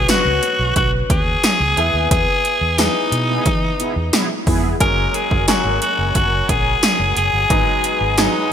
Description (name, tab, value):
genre	1980s-style pop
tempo	89 BPM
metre	4/4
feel	straight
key	F# mixolydian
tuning	A4 = 440 Hz
part	breathy tenor saxophone	melody	0.0-8.5 s	D#4 to A#4	-19 LUFS	left 1 dB	ping-pong delay
part	clear concert grand piano	accompaniment	0.0-8.5 s	E3 to G#4	-23 LUFS	left 2 dB	wide subtle chorus
part	vintage muted fingered electric bass	bass	0.0-8.3 s	F#1 to E3	-22 LUFS	equal	none
part	80s electronic pad drums	drums	0.1-8.3 s	hi-hat, kick drum, snare drum, tambourine	-19 LUFS	equal	overdrive
part	mellow synth brass	stabs	3.3-4.8 s	B3 to G#4	-25 LUFS	right 2 dB	chorus
part	bright large flute ensemble	sustained chords	4.8-8.5 s	F#4 to G#5	-24 LUFS	left 2 dB	none
room	light reverb, small room ambience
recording	bright 1980s-style digital production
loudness	-14 LUFS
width	side -8 dB against mid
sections	0.0-8.5 A section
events	band accent 2.1-4.8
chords	0.0 Bsus2; 1.8 E; 4.8 F#add9; 7.5 G#m7